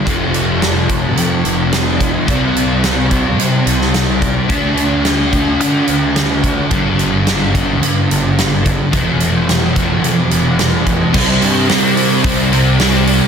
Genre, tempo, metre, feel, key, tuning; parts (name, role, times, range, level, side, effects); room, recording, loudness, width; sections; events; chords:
rock, shoegaze and dream pop; 108 BPM; 4/4; straight; A4 = 438 Hz
fuzz guitar; riff; 0.0-13.3 s; F2 to D4; -14 LUFS; equal; distortion, ensemble chorus
fuzz picked electric bass; bass; 0.1-13.2 s; F1 to D3; -19 LUFS; equal; overdrive
huge arena drum kit; drums; 0.1-13.2 s; crash cymbal, hi-hat, kick drum, snare drum; -18 LUFS; equal
light reverb, small room ambience; dense, heavily limited modern master; -12 LUFS; side -7 dB against mid
0.0-11.1 A section; 11.1-13.3 B section
0.1 F5; 2.3 C5; 4.5 D5; 6.7 G5; 8.9 F5; 11.1 C5